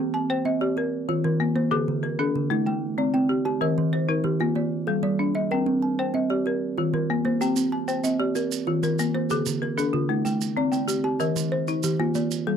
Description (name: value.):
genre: southern african traditional, mbira-style interlocking cycle.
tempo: 126 BPM (dotted quarters).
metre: 12/8.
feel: straight.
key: unclear.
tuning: A4 = 440 Hz.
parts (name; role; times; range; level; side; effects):
folk marimba with hard mallets; arpeggios; 0.0-12.6 s; D3-29c to A5-43c; -25 LUFS; left 6 dB; none.
kalimba; arpeggios; 0.0-12.6 s; D3-29c to A5-43c; -25 LUFS; right 6 dB; none.
maracas; percussion; 7.4-12.5 s; none; -35 LUFS; right 12 dB; none.
room: light reverb.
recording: dry, close 1970s-style studio recording.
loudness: -22 LUFS.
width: side -8 dB against mid.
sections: 0.0-12.6 A section.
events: none.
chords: 0.0 Cm; 0.8 Eb; 1.7 D5; 2.7 Cm; 3.6 Eb; 4.6 Gm; 5.5 Cm; 6.5 Eb; 7.4 Cm; 8.4 Eb; 9.3 Dm; 10.3 Cm; 11.2 Eb.